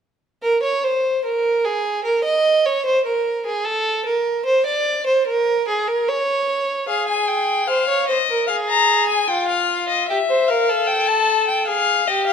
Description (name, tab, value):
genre	classical, baroque-style fugue for string quartet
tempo	75 BPM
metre	4/4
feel	straight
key	unclear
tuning	A4 = 441 Hz
part	warm violin	second line	0.4-12.3 s	F4 to Eb5	-18 LUFS	right 2 dB	none
part	warm violin	melody	6.9-12.3 s	Eb5 to Bb5	-18 LUFS	left 6 dB	none
room	moderate recital hall reverb, RT60 1.3 s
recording	none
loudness	-17 LUFS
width	side -7 dB against mid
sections	0.4-12.3 A section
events	none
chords	0.4 N.C.; 6.9 Fm/Ab; 10.1 Em/G; 11.7 Fm